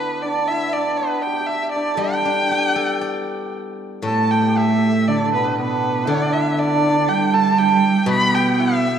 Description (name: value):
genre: chinese traditional, Chinese chamber ensemble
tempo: 60 BPM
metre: 2/4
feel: rubato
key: G gong mode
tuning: A4 = 442 Hz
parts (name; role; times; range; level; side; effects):
- clear erhu; melody; 0.0-9.0 s; B4 to B5; -22 LUFS; left 2 dB; none
- hammered dulcimer; second line; 0.0-9.0 s; B3 to B4; -22 LUFS; right 4 dB; none
- steel-string zither; accompaniment; 0.0-9.0 s; A2 to D5; -26 LUFS; left 3 dB; none
- rich cello; second line; 4.0-9.0 s; B2 to B3; -19 LUFS; right 3 dB; none
room: wet concert hall reverb, RT60 2.4 s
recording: dark, warm production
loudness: -16 LUFS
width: side -8 dB against mid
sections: 0.0-4.1 A section; 4.1-9.0 B section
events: none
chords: none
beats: | 0.00 0.99 | 2.00 3.02 | 4.05 5.08 | 6.09 7.09 | 8.08